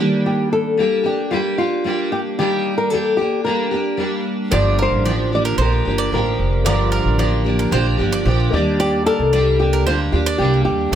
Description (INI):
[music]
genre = pop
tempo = 112 BPM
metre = 4/4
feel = straight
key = unclear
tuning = A4 = 440 Hz
[part]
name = picked steel-string acoustic guitar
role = accompaniment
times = 0.0-11.0 s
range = G2 to G4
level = -20 LUFS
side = equal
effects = double-tracked left and right, plate reverb
[part]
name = flamenco guitar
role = melody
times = 0.3-11.0 s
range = F4 to D5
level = -20 LUFS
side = left 2 dB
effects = plate reverb, ping-pong delay
[part]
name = warm upright piano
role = accompaniment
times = 4.5-11.0 s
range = A3 to D5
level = -30 LUFS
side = left 5 dB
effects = plate reverb
[part]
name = bowl-back mandolin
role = arpeggios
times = 4.5-11.0 s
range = Bb4 to D5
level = -25 LUFS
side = right 6 dB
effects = plate reverb, ping-pong delay
[part]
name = upright bass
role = bass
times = 4.5-11.0 s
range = F1 to Eb2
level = -19 LUFS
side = right 1 dB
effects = none
[sound]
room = light reverb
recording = none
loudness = -16 LUFS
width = side -10 dB against mid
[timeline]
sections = 0.0-11.0 A section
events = none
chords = 0.0 Ebmaj7; 4.5 Gm7; 8.5 Ebmaj7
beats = | 0.24 0.77 1.31 1.84 | 2.38 2.91 3.45 3.98 | 4.52 5.05 5.59 6.12 | 6.66 7.19 7.72 8.26 | 8.79 9.33 9.86 10.39 | 10.93